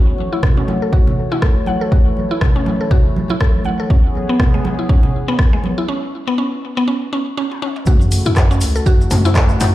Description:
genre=afro house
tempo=121 BPM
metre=4/4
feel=swing 57% on 16ths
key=unclear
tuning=A4 = 440 Hz
part: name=warm analog pad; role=sustained chords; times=0.0-9.7 s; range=C#3 to C#5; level=-24 LUFS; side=left 1 dB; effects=chorus, sidechain pumping
part: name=congas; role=percussion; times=0.2-5.8 s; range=none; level=-22 LUFS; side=right 2 dB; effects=none
part: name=mallet-like synth pluck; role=arpeggios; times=0.3-9.7 s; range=G#3 to F#5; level=-21 LUFS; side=equal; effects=chorus, sidechain pumping, tape echo
part: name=deep house drum kit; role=drums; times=0.4-9.7 s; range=handclaps, hi-hat, rim click, toms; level=-24 LUFS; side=equal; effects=high-pass filter on snare, high-pass filter on toms, high-pass filter on hats, high-pass filter on room
part: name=electronic kick drum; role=drums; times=0.4-9.5 s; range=none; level=-14 LUFS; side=equal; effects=none
part: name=warm 808-style bass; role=bass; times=7.9-9.7 s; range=C#2 to F#2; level=-16 LUFS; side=equal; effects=sidechain pumping
part: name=maracas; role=percussion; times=7.9-9.7 s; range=none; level=-32 LUFS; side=left 1 dB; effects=none
part: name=djembe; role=percussion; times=9.1-9.7 s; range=none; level=-23 LUFS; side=left 1 dB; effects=none
room=light reverb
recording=played on a big sound system in a bare room, large studio reverb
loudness=-13 LUFS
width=side -15 dB against mid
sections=0.0-7.9 A section; 7.9-9.7 B section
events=build-up 0.0-7.9; filter sweep on synth pluck 0.0-7.9; break 5.9-7.9; drum fill 7.4-7.9; drop 7.9-9.7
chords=0.0 F#m7; 3.9 C#m7; 7.9 F#m7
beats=0.43 0.93 1.42 | 1.92 2.42 2.91 3.41 | 3.90 4.40 4.89 5.39 | 5.89 6.38 6.88 7.37 | 7.87 8.37 8.86 9.36

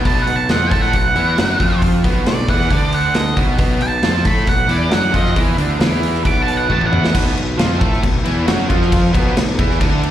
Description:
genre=blues rock power trio and southern rock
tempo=135 BPM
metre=4/4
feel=straight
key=unclear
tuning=A4 = 440 Hz
part: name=overdriven semi-hollow guitar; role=riff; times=0.0-10.1 s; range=A2 to A4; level=-21 LUFS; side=right 1 dB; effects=slapback echo
part: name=fuzz picked electric bass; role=bass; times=0.0-10.1 s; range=A1 to A2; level=-19 LUFS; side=equal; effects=overdrive
part: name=octave-fuzz lead guitar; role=melody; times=0.1-7.1 s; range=D5 to D6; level=-19 LUFS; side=right 2 dB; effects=distortion, plate reverb
part: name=big rock drum kit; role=drums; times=0.1-10.1 s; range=crash cymbal, hi-hat, kick drum, snare drum, toms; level=-18 LUFS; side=equal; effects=none
room=light reverb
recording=live gig heard through the venue's PA, recital hall reverb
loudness=-13 LUFS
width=side -11 dB against mid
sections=0.0-7.1 A section; 7.1-10.1 B section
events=lead electric guitar solo 0.0-7.1; drum fill 6.7-7.1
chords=0.0 B5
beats=| 0.06 0.50 0.94 1.38 | 1.82 2.27 2.71 3.15 | 3.60 4.04 4.48 4.92 | 5.37 5.81 6.26 6.70 | 7.14 7.59 8.03 8.48 | 8.92 9.37 9.81

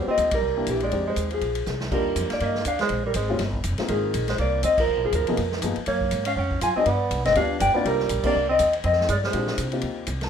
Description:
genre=jazz, small-group swing and bop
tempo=242 BPM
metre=4/4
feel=swing 57% on 8ths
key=Eb major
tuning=A4 = 439 Hz
part: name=hollow-body jazz guitar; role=melody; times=0.0-9.7 s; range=G4 to Ab5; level=-24 LUFS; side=left 1 dB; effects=none
part: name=breathy alto saxophone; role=second line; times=0.0-9.7 s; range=Eb3 to F4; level=-29 LUFS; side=right 7 dB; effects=none
part: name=warm baby grand piano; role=accompaniment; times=0.0-10.3 s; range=F3 to A5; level=-29 LUFS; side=left 4 dB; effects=none
part: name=upright bass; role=bass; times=0.0-10.3 s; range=F1 to C3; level=-28 LUFS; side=equal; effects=none
part: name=swinging big-band drum kit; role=drums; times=0.2-10.3 s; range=crash cymbal, hi-hat, kick drum, ride cymbal, snare drum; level=-32 LUFS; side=equal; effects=none
room=light reverb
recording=minimal, uncompressed stereo recording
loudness=-21 LUFS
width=side -8 dB against mid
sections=0.0-1.9 A section; 1.9-9.8 B section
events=band accent 0.3, 4.8, 8.2; drum fill 1.7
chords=0.4 C7; 0.9 Fm7; 1.4 Bbsus2; 1.9 Ebmaj9; 2.9 Bbm9; 3.4 Ebadd9; 3.9 Abadd9; 4.9 Db13 (rootless); 5.9 Gbmaj9; 6.9 G7; 7.9 Cm7; 8.8 Fsus2; 9.3 Bb13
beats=0.18 0.43 0.68 | 0.92 1.17 1.42 1.67 | 1.91 2.16 2.41 2.66 | 2.90 3.15 3.40 3.65 | 3.89 4.14 4.39 4.64 | 4.88 5.13 5.38 5.62 | 5.87 6.12 6.37 6.62 | 6.86 7.11 7.36 7.61 | 7.85 8.10 8.35 8.60 | 8.84 9.09 9.34 9.59 | 9.83 10.08

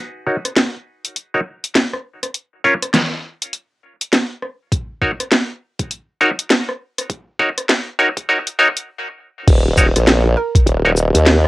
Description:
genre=glitch hop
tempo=101 BPM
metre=4/4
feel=swing 62% on 16ths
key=Eb minor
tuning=A4 = 440 Hz
part: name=bright clav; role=stabs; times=0.3-10.9 s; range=Db4 to Db5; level=-16 LUFS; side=equal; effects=vintage 12-bit sampler grit, sidechain pumping, low-pass filter, cassette tape, tape echo
part: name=drum and bass drum kit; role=drums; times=0.5-11.5 s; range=crash cymbal, hi-hat, rim click, shaker, snare drum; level=-16 LUFS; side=equal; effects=cassette tape
part: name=electronic kick drum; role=drums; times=4.7-10.6 s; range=none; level=-14 LUFS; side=equal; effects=cassette tape
part: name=formant-sweep wobble bass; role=bass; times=9.5-11.5 s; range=Eb1 to Eb2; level=-14 LUFS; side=equal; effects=chorus, overdrive
part: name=woody wave-folded pluck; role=melody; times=10.4-10.6 s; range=Bb4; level=-25 LUFS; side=right 5 dB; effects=chorus, cassette tape, tape echo
room=moderate booth ambience, RT60 0.2 s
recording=home recording on cassette, high-pass filter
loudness=-15 LUFS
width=side -19 dB against mid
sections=0.0-9.5 A section; 9.5-11.5 B section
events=build-up 0.0-9.5; filter sweep on clav 0.0-9.5; filter sweep 0.0-9.5; stop 8.9-9.5; drop 9.5-11.5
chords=0.0 Ebm7; 2.3 Bbm; 4.7 Ebm7; 9.5 Eb5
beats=0.57 1.16 1.75 | 2.35 2.94 3.54 4.13 | 4.72 5.32 5.91 6.51 | 7.10 7.69 8.29 8.88 | 9.48 10.07 10.66 11.26

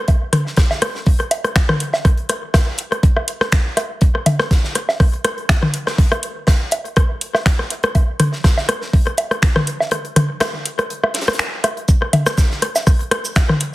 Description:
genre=techno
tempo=122 BPM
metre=4/4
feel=swing 54% on 16ths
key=none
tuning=none
part: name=electronic kick drum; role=drums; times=0.1-13.5 s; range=none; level=-14 LUFS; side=equal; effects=studio ambience
part: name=gated 80s drum kit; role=drums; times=0.1-13.7 s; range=hi-hat, snare drum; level=-29 LUFS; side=left 1 dB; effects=high-pass filter on hats, studio ambience, high-pass filter on snare, high-pass filter on room
part: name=booming analog drum machine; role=percussion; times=0.1-13.6 s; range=rim click, toms, woodblock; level=-18 LUFS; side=left 1 dB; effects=studio ambience, tape echo
part: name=garage drum kit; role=drums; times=0.3-13.7 s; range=finger snaps, hi-hat, shaker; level=-20 LUFS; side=equal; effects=studio ambience
room=light reverb, digital ambience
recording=heavily compressed radio sound, multiband compression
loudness=-15 LUFS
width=side -18 dB against mid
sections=0.0-13.7 A section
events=break 9.9-11.9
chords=none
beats=| 0.08 0.57 1.06 1.56 | 2.05 2.54 3.03 3.52 | 4.02 4.51 5.00 5.49 | 5.98 6.47 6.97 7.46 | 7.95 8.44 8.93 9.43 | 9.92 10.41 10.90 11.39 | 11.88 12.38 12.87 13.36

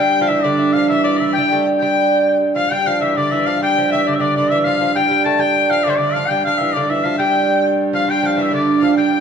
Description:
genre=medieval dance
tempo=134 BPM (dotted quarters)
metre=6/8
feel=straight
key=unclear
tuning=A4 = 440 Hz
part: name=bright shawm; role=melody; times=0.0-9.2 s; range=C5 to A5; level=-18 LUFS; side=left 2 dB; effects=none
part: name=dark fiddle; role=second line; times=0.0-9.2 s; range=D5 to A5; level=-22 LUFS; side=left 7 dB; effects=none
part: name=lute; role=second line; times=0.0-9.2 s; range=D3 to A3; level=-19 LUFS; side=right 4 dB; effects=none
part: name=clear viola da gamba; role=drone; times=0.0-9.2 s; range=G2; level=-21 LUFS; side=right 2 dB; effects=none
room=wet recital hall reverb, RT60 1.8 s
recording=dark, warm production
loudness=-14 LUFS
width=side -7 dB against mid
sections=0.0-2.7 A section; 2.7-9.2 B section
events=speeding up 0.0-9.2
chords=none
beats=0.44 | 0.90 1.35 | 1.81 2.26 | 2.71 3.16 | 3.61 4.06 | 4.51 4.96 | 5.41 5.86 | 6.30 6.75 | 7.20 7.64 | 8.08 8.53 | 8.97

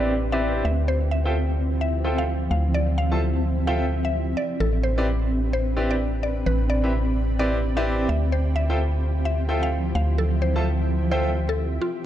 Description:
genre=UK garage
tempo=129 BPM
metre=4/4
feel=swing 61% on 16ths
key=unclear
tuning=A4 = 440 Hz
part: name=mallet-like synth pluck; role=melody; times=0.0-12.0 s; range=F4 to F5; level=-30 LUFS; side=left 1 dB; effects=chorus, dub echo
part: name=soft string machine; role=sustained chords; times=0.0-12.0 s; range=C4 to C5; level=-34 LUFS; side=equal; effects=ensemble chorus, sidechain pumping
part: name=bright concert grand piano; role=stabs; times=0.0-11.3 s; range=C4 to A5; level=-28 LUFS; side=equal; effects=low-pass filter, tape echo
part: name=organ-like FM bass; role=bass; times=0.0-11.8 s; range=A1 to D2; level=-23 LUFS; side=equal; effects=tube saturation, high-pass filter
part: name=downlifter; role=sound effects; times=0.0-0.9 s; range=none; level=barely audible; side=none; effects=none
part: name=granular cloud pad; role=texture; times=0.1-12.1 s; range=F3 to B5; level=-29 LUFS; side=right 2 dB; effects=built-in reverb, sidechain pumping
room=light reverb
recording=dark, warm production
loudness=-21 LUFS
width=side -11 dB against mid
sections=0.0-12.0 A section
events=none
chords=0.0 Am11; 0.7 Dm11; 4.6 Am11; 8.1 Dm11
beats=0.42 | 0.88 1.35 1.81 2.28 | 2.74 3.21 3.67 4.14 | 4.60 5.07 5.53 6.00 | 6.46 6.93 7.39 7.86 | 8.32 8.79 9.25 9.72 | 10.18 10.65 11.12 11.58 | 12.04

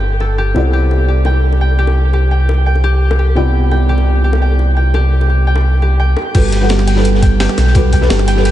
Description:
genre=liquid drum and bass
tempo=171 BPM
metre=4/4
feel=straight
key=unclear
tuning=A4 = 440 Hz
part: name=felt-muted upright piano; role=accompaniment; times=0.0-8.5 s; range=C3 to F#5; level=-18 LUFS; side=equal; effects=lush chorus, tape echo
part: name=concert harp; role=arpeggios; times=0.0-8.5 s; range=G4 to G5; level=-20 LUFS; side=left 1 dB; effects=low-pass filter, tape echo
part: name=sub bass with octave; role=bass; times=0.0-8.5 s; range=G1 to C2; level=-12 LUFS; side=equal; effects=none
part: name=bongos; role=percussion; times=0.2-6.2 s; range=none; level=-26 LUFS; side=left 3 dB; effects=none
part: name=breakbeat sampler-style drum kit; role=drums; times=6.3-8.5 s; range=crash cymbal, hi-hat, snare drum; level=-21 LUFS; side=equal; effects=studio reverb
part: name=crunchy breakbeat drum kit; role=drums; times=6.3-8.5 s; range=hi-hat, snare drum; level=-27 LUFS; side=equal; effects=high-pass filter on hats, studio reverb, high-pass filter on snare, high-pass filter on room
part: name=electronic kick drum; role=drums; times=6.3-8.0 s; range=none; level=-13 LUFS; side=equal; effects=studio reverb
room=light reverb, studio reverb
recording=nothing above 10.3 kHz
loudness=-10 LUFS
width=side -13 dB against mid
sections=0.0-6.3 A section; 6.3-8.5 B section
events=drop 6.3-8.5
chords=0.0 Gadd9; 0.6 Cmaj9; 6.3 Gmaj9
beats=0.03 0.38 | 0.73 1.08 1.44 1.79 | 2.14 2.49 2.84 3.19 | 3.54 3.89 4.24 4.59 | 4.94 5.29 5.64 6.00 | 6.35 6.70 7.05 7.40 | 7.75 8.10 8.45

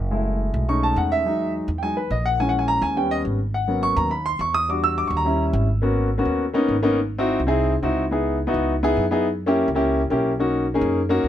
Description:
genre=Afro-Cuban jazz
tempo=210 BPM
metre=4/4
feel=straight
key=G# minor from 5.8 s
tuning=A4 = 439 Hz
part: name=upright bass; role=bass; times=0.0-11.3 s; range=F#1 to F#2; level=-25 LUFS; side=right 1 dB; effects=none
part: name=clear concert grand piano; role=accompaniment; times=0.1-11.3 s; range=E3 to E6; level=-20 LUFS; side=left 1 dB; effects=none
room=light reverb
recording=none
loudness=-19 LUFS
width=side -11 dB against mid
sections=0.0-5.8 A section; 5.8-11.3 B section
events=grand piano solo 0.0-5.8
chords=0.1 F#m7; 0.7 B13; 1.3 Emaj9; 2.4 A#m7b5; 3.0 D#aug7; 3.5 G#m11; 4.7 Em7; 5.3 D#7b9; 5.8 G#m11; 7.0 G#7b13; 8.1 C#m7; 9.3 F#7b9; 10.4 Bmaj7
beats=| 0.11 0.40 0.69 0.97 | 1.26 1.54 1.83 2.11 | 2.40 2.69 2.97 3.26 | 3.54 3.83 4.11 4.40 | 4.68 4.97 5.26 5.54 | 5.83 6.11 6.40 6.69 | 6.97 7.26 7.54 7.83 | 8.12 8.40 8.69 8.97 | 9.26 9.54 9.82 10.11 | 10.39 10.68 10.96 11.24

